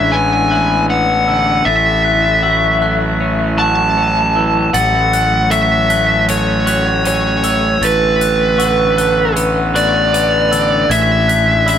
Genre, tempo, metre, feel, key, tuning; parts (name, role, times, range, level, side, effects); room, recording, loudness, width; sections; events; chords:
post-rock; 78 BPM; 4/4; straight; A4 = 440 Hz
fuzz lead guitar; melody; 0.0-11.8 s; B4 to A5; -14 LUFS; left 1 dB; distortion, digital delay
warm studio string section; sustained chords; 0.0-11.8 s; D3 to E4; -24 LUFS; right 1 dB
glockenspiel with rubber mallets; arpeggios; 0.0-11.8 s; E6 to A6; -21 LUFS; right 5 dB; digital delay
twelve-string electric guitar; arpeggios; 0.0-11.8 s; A2 to F#4; -21 LUFS; left 1 dB; lush chorus, digital delay
fuzz fingered electric bass; bass; 0.0-11.8 s; A1; -18 LUFS; equal; overdrive
hi-hat; drums; 4.7-11.8 s; -27 LUFS; left 4 dB
moderate booth ambience, RT60 0.2 s; -11 LUFS; side -9 dB against mid
0.0-11.8 A section
0.0 E7/A; 1.7 F#m7/A; 7.8 Bm7/A; 10.9 E7/A